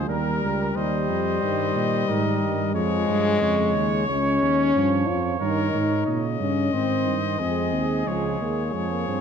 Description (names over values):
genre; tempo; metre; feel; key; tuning
classical, brass quintet; 90 BPM; 4/4; straight; unclear; A4 = 442 Hz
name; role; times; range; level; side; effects
clear trumpet; melody; 0.0-9.2 s; Bb4 to Eb5; -30 LUFS; left 9 dB; none
mellow trumpet; second line; 0.0-9.2 s; Ab4 to Db5; -30 LUFS; right 8 dB; none
mellow French horn; accompaniment; 0.0-9.2 s; F3 to F4; -24 LUFS; left 4 dB; none
warm trombone; accompaniment; 0.0-9.2 s; Db3 to Ab3; -32 LUFS; right 4 dB; none
dark tuba; bass; 0.0-9.2 s; Db2 to Bb2; -27 LUFS; right 5 dB; none
room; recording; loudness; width
moderate concert hall reverb, RT60 1.8 s; none; -21 LUFS; side -7 dB against mid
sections
0.0-9.2 A section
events
none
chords
0.1 Eb; 2.7 Db; 5.4 Eb7/G; 6.7 Ab; 8.1 Db